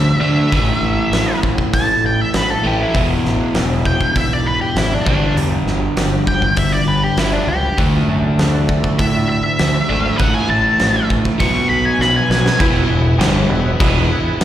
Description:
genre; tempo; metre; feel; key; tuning
blues rock power trio and southern rock; 99 BPM; 4/4; straight; unclear; A4 = 440 Hz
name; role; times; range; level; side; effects
octave-fuzz lead guitar; melody; 0.0-12.6 s; D4 to C#6; -19 LUFS; equal; distortion, slapback echo
crunchy overdriven guitar; riff; 0.0-14.1 s; E2 to D4; -18 LUFS; equal; slapback echo
growling fingered electric bass; bass; 0.0-14.1 s; E1 to D3; -20 LUFS; equal; overdrive
huge arena drum kit; drums; 0.5-14.4 s; crash cymbal, hi-hat, kick drum, snare drum; -20 LUFS; equal; none
overdriven tonewheel organ; sustained chords; 3.0-14.4 s; A3 to C5; -28 LUFS; right 4 dB; chorus vibrato, slow rotary speaker
room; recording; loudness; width
studio reverb; live gig heard through the venue's PA, recital hall reverb; -13 LUFS; side -11 dB against mid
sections
0.0-12.6 A section; 12.6-14.4 B section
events
drum fill 12.0-12.6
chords
0.0 D5; 0.5 A5; 2.9 E; 5.1 G; 7.8 D; 10.2 A; 11.4 B; 12.6 E

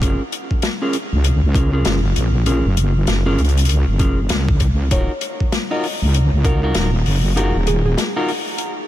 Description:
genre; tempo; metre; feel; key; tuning
glitch hop; 98 BPM; 4/4; swing 60% on 16ths; unclear; A4 = 436 Hz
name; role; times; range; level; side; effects
mellow electric guitar; stabs; 0.0-8.3 s; Db4 to Bb4; -24 LUFS; equal; sidechain pumping, tape echo
wobble bass; bass; 0.0-8.0 s; Eb1 to Db2; -16 LUFS; equal; chorus, overdrive
electronic kick drum; drums; 0.0-6.6 s; none; -18 LUFS; equal; overdrive
open jazz drum kit; drums; 0.0-8.7 s; hi-hat, rim click, snare drum; -24 LUFS; left 3 dB; none
woody wave-folded pluck; melody; 4.9-7.9 s; Ab4 to Eb5; -27 LUFS; right 2 dB; chorus, tape echo
room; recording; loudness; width
light reverb, small room ambience; none; -15 LUFS; side -13 dB against mid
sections
0.0-8.9 A section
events
none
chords
0.0 Gbmaj7; 4.9 Ebmadd9

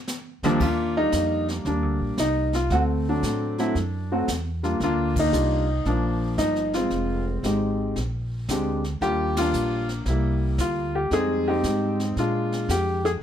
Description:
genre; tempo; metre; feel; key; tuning
jazz piano trio; 114 BPM; 4/4; swing 68% on 8ths; Eb major; A4 = 437 Hz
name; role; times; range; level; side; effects
jazz brush drum kit; drums; 0.1-13.2 s; brushed snare drum, crash cymbal, hi-hat, kick drum, ride cymbal, snare drum; -33 LUFS; left 1 dB; none
warm grand piano; melody; 0.4-13.2 s; Eb2 to Ab4; -23 LUFS; left 1 dB; none
upright bass; bass; 0.4-13.2 s; F1 to Bb2; -27 LUFS; equal; none
room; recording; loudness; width
light reverb; none; -22 LUFS; side -9 dB against mid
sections
0.6-13.2 A section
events
band accent 5.1, 9.3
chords
0.0 Bb; 0.6 Ebmaj7; 2.7 D7; 4.8 Gm7; 6.9 Fm7; 8.0 Bb7; 9.0 Ebmaj9; 10.1 C7; 11.1 Fm7; 12.2 Bb7

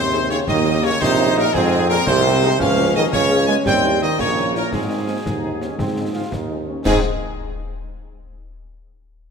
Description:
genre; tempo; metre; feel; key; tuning
military-style march for wind band; 113 BPM (dotted quarters); 6/8; straight; Ab major; A4 = 441 Hz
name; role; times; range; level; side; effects
clear trumpet section; melody; 0.0-7.0 s; Ab4 to Ab5; -22 LUFS; left 2 dB; none
mellow euphonium; second line; 0.0-7.0 s; Ab2 to Ab3; -22 LUFS; right 3 dB; none
clear trombone section; sustained chords; 0.0-7.0 s; Eb3 to F4; -25 LUFS; right 2 dB; none
clear tuba; bass; 0.0-7.0 s; Bb1 to Ab2; -22 LUFS; right 2 dB; none
mellow French horn section; accompaniment; 0.1-7.0 s; Ab3 to Ab4; -27 LUFS; left 7 dB; none
concert snare drum, clash cymbals and concert bass drum; drums; 0.1-7.0 s; none; -28 LUFS; left 2 dB; none
room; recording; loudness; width
wet concert hall reverb, RT60 2.2 s; none; -16 LUFS; side -6 dB against mid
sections
0.0-6.9 A section; 6.9-7.9 B section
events
none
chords
0.5 Eb7; 1.5 Fm; 2.6 Bbm7/Db; 3.7 Eb7b9; 4.7 Ab

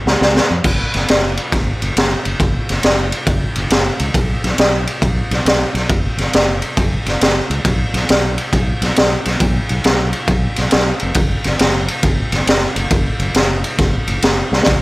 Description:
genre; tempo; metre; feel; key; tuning
electric blues shuffle; 137 BPM; 4/4; swing 66% on 8ths; unclear; A4 = 440 Hz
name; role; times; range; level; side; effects
fingered electric bass; bass; 0.1-14.8 s; E#1 to E#2; -20 LUFS; equal; none
raw garage drum kit; drums; 0.1-14.8 s; crash cymbal, kick drum, ride cymbal, snare drum; -14 LUFS; equal; none
room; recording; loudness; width
little or no reverb; none; -13 LUFS; side -21 dB against mid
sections
0.6-14.8 A section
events
drum fill 0.0-0.6, 14.4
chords
none

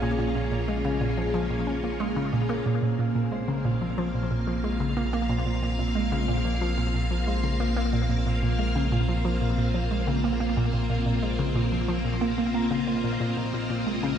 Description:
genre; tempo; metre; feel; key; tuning
ambient, sequencer-driven space music; 91 BPM; 4/4; straight; Bb minor; A4 = 440 Hz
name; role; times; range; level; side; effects
string machine, full ensemble; sustained chords; 0.0-14.2 s; Bb3 to F5; -30 LUFS; equal; ensemble chorus, shimmer reverb
concert harp; arpeggios; 0.0-14.2 s; Ab3 to Bb5; -36 LUFS; moving between left 5 dB and right 1 dB; auto-pan, ping-pong delay, shimmer reverb
hollow square pluck; riff; 0.0-14.1 s; Bb2 to Db4; -27 LUFS; right 1 dB; chorus, phaser, ping-pong delay
warm sub bass; bass; 0.0-14.2 s; Bb1; -30 LUFS; equal; none
bubbling stepped-filter texture; texture; 0.0-2.7 s; F5; -48 LUFS; right 1 dB; none
room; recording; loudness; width
moderate echo chamber reverb, RT60 2.2 s; echo-heavy mix; -24 LUFS; side -9 dB against mid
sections
0.0-2.7 A section; 2.7-14.2 B section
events
none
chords
0.0 Bbm7; 2.7 Bbsus2

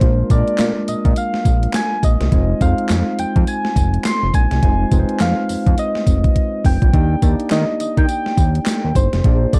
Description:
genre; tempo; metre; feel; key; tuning
R&B, new jack swing; 104 BPM; 4/4; swing 60% on 16ths; F dorian; A4 = 442 Hz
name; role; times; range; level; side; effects
soft struck synth lead; melody; 0.0-9.6 s; C5 to C6; -25 LUFS; equal; chorus
tine electric piano; accompaniment; 0.0-9.6 s; Ab3 to D5; -26 LUFS; equal; none
fat analog bass; bass; 0.0-9.6 s; F1 to Eb3; -20 LUFS; equal; none
gated 80s digital drum machine; drums; 0.0-9.6 s; handclaps, hi-hat, kick drum, snare drum, tambourine; -19 LUFS; equal; gated reverb, gated reverb snare, overdrive
room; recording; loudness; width
digital ambience; dark, warm production; -17 LUFS; mono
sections
0.0-9.6 A section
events
drum fill 6.4-6.9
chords
0.0 Bb7; 2.3 Fm7; 6.9 Ebmaj7

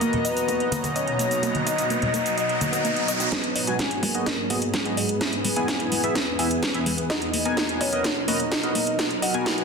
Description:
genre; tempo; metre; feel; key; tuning
progressive house; 127 BPM; 4/4; straight; B major; A4 = 440 Hz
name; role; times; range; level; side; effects
soft octave-layered synth lead; melody; 0.0-9.6 s; G#4 to F#5; -28 LUFS; left 1 dB; chorus, ping-pong delay
shimmering ambient pad; sustained chords; 0.0-9.6 s; E2 to A#5; -30 LUFS; equal; chorus, built-in reverb, sidechain pumping
soft round pluck; arpeggios; 0.0-9.6 s; G#3 to G#5; -32 LUFS; equal; chorus, sidechain pumping, ping-pong delay
chorused polysynth; stabs; 0.0-9.6 s; B3 to A#5; -28 LUFS; equal; sidechain pumping, ping-pong delay
house drum kit; drums; 0.0-9.6 s; hi-hat, shaker, snare drum; -26 LUFS; right 1 dB; overdrive, high-pass filter on hats, high-pass filter on perc, high-pass filter on snare, high-pass filter on room
riser; sound effects; 0.7-3.3 s; none; -30 LUFS; right 1 dB; none
congas and bongos; percussion; 0.1-3.3 s; none; -32 LUFS; left 1 dB; sidechain pumping on perc
electronic kick drum; drums; 3.3-9.6 s; none; -34 LUFS; right 1 dB; overdrive, high-pass filter on kick
room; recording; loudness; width
moderate lush hall reverb, RT60 2.0 s; dense, heavily limited modern master; -21 LUFS; side -5 dB against mid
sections
0.0-3.3 A section; 3.3-9.6 B section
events
riser 0.7-3.3; build-up 3.3-9.6; drum fill 3.3-9.6; filter sweep on synth pluck 3.3-9.6; filter sweep on analog polysynth 3.3-9.6; filter sweep on soft synth lead 3.3-9.6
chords
0.0 Bmaj7; 3.3 G#m7; 5.2 E; 7.1 Bmaj7

